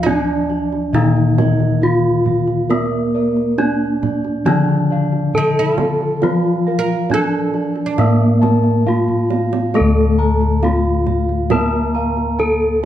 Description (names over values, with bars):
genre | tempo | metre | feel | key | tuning
Javanese gamelan | 68 BPM | 4/4 | straight | D pelog | A4 = 439 Hz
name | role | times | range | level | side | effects
gamelan-type bronze metallophone | melody | 0.0-12.8 s | Bb3 to Bb4 | -19 LUFS | right 1 dB | none
oud | second line | 0.0-10.6 s | D4 to Bb4 | -24 LUFS | right 5 dB | none
gamelan-type bronze metallophone | accompaniment | 0.0-12.8 s | D3 to Bb3 | -20 LUFS | left 3 dB | none
gamelan-type bossed gongs | arpeggios | 0.0-12.8 s | Bb4 to Bb5 | -28 LUFS | left 4 dB | none
gamelan-type bronze metallophone | arpeggios | 0.0-12.8 s | Bb4 to Bb5 | -26 LUFS | right 6 dB | slapback echo
gamelan-type bossed gongs | bass | 0.0-12.8 s | D2 to Bb4 | -20 LUFS | left 1 dB | none
kendang | percussion | 0.1-12.6 s | none | -25 LUFS | right 6 dB | none
room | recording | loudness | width
moderate recital hall reverb, RT60 1.7 s | dark, warm production | -14 LUFS | side -11 dB against mid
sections
0.0-12.8 A section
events
drum fill 8.9-9.8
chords
none